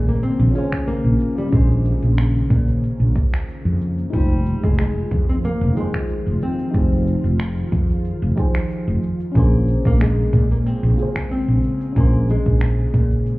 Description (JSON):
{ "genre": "sunset chillout", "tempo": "92 BPM", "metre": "4/4", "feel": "swing 53% on 16ths", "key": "unclear", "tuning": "A4 = 440 Hz", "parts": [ { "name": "nylon-string guitar", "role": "melody", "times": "0.0-13.4 s", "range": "G3 to Db4", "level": "-24 LUFS", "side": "left 1 dB", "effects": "ping-pong delay" }, { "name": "mellow FM electric piano", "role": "accompaniment", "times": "0.0-13.4 s", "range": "Db3 to C5", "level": "-28 LUFS", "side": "left 1 dB", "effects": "chorus, phaser, auto-pan, ping-pong delay" }, { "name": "ethereal airy pad", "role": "sustained chords", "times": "0.0-13.4 s", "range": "Db3 to F4", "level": "-28 LUFS", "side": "right 1 dB", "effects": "ensemble chorus, built-in reverb" }, { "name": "woody fretless electric bass", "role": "bass", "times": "0.0-13.3 s", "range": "F1 to Bb2", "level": "-18 LUFS", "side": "equal", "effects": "none" }, { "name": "deep house drum kit", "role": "drums", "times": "0.1-13.4 s", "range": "cabasa, finger snaps, hi-hat", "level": "-32 LUFS", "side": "equal", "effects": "studio reverb" }, { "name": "electronic kick drum", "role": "drums", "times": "0.7-13.1 s", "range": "none", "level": "-20 LUFS", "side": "equal", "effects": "studio reverb" } ], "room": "light reverb", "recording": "heard muffled through a wall, club ambience, EQ", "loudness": "-16 LUFS", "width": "side -20 dB against mid", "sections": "0.0-13.4 A section", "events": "none", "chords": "0.0 Bbm9; 4.1 Fm9; 9.0 Bbm9" }